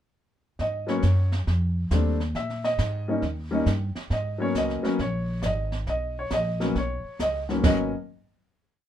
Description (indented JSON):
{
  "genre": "jazz piano trio",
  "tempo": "136 BPM",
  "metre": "4/4",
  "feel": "swing 66% on 8ths",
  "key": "G# minor",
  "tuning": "A4 = 439 Hz",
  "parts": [
    { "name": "warm upright piano", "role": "melody", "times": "0.6-7.9 s", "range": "G#2 to E5", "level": "-26 LUFS", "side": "left 1 dB", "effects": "none" },
    { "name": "upright bass", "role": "bass", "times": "0.6-7.9 s", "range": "G#1 to A#2", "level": "-26 LUFS", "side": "equal", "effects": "none" },
    { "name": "jazz brush drum kit", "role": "drums", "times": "0.6-8.0 s", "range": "brushed snare drum, crash cymbal, hi-hat, kick drum, snare drum", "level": "-30 LUFS", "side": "right 2 dB", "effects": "none" }
  ],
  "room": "light reverb",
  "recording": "minimal, uncompressed stereo recording",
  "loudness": "-24 LUFS",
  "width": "side -11 dB against mid",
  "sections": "0.6-7.6 A section; 7.6-8.9 final chord",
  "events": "none",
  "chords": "0.6 G#7sus4; 1.5 F7; 2.3 C#m69 (rootless); 3.2 D#; 4.1 G#m11",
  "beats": "| 0.59 1.03 1.47 1.91 | 2.35 2.79 3.23 3.67 | 4.11 4.55 4.99 5.43 | 5.87 6.32 6.76 7.20 | 7.64"
}